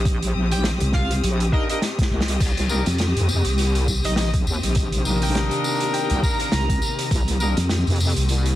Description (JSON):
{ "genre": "glitch hop", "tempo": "102 BPM", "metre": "4/4", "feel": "swing 57% on 16ths", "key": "C minor", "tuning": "A4 = 442 Hz", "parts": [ { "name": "wobble bass", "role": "bass", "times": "0.0-8.6 s", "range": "Bb1 to F2", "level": "-21 LUFS", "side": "equal", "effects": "chorus, tube saturation" }, { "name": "rich chamber string section", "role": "texture", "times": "0.0-8.6 s", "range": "C4 to Eb6", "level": "-29 LUFS", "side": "left 2 dB", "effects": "sidechain pumping" }, { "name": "electronic kick drum", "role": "drums", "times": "0.1-7.2 s", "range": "none", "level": "-23 LUFS", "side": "equal", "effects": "none" }, { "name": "vintage drum kit", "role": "drums", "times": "0.1-8.6 s", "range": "crash cymbal, hi-hat, rim click, snare drum, tambourine", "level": "-26 LUFS", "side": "equal", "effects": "none" }, { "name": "sync lead", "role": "melody", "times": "0.5-7.1 s", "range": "Eb5 to Bb5", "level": "-30 LUFS", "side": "equal", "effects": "lush chorus, digital delay" }, { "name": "vowel-sweep wobble bass", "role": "bass", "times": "0.8-7.8 s", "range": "C2 to F2", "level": "-21 LUFS", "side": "equal", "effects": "chorus" }, { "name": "clear horn section", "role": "stabs", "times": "1.5-7.5 s", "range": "Bb3 to Bb4", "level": "-28 LUFS", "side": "left 1 dB", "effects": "sidechain pumping, digital delay" }, { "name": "warbly tape-like pad", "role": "sustained chords", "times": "2.7-8.6 s", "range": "C3 to Bb3", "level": "-31 LUFS", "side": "left 1 dB", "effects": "chorus, built-in reverb, sidechain pumping" } ], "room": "small room ambience", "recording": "dense, heavily limited modern master, vinyl crackle", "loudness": "-19 LUFS", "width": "side -14 dB against mid", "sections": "0.0-8.6 A section", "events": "drum fill 1.8-2.4", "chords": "0.0 Cm7" }